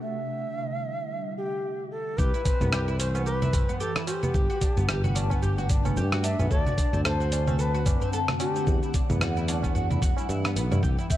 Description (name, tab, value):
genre	organic downtempo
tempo	111 BPM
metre	4/4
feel	swing 58% on 16ths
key	unclear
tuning	A4 = 438 Hz
part	breathy mellow Native American-style cedar flute	melody	0.0-11.2 s	G4 to E5	-32 LUFS	equal	digital delay
part	ethereal airy pad	sustained chords	0.0-11.2 s	D3 to F#5	-35 LUFS	equal	ensemble chorus, built-in reverb, sidechain pumping
part	oud	arpeggios	2.2-11.2 s	B3 to A4	-33 LUFS	left 1 dB	digital delay
part	sustaining fretless electric bass	bass	2.2-11.0 s	G1 to G2	-27 LUFS	equal	none
part	dusty soul sampler-style drum kit	drums	2.2-11.2 s	cabasa, congas, hi-hat, rim click	-30 LUFS	right 1 dB	none
part	electronic kick drum	drums	2.2-11.2 s	none	-25 LUFS	equal	none
part	tabla	percussion	2.4-11.2 s	none	-32 LUFS	equal	none
room	light reverb, small room reverb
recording	dark, warm production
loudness	-24 LUFS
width	side -13 dB against mid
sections	0.0-2.2 A section; 2.2-11.2 B section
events	filter sweep on ambient pad 0.0-2.2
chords	0.0 Em9; 2.2 Cmaj7; 4.3 Gmaj9; 6.5 D7; 8.7 Em9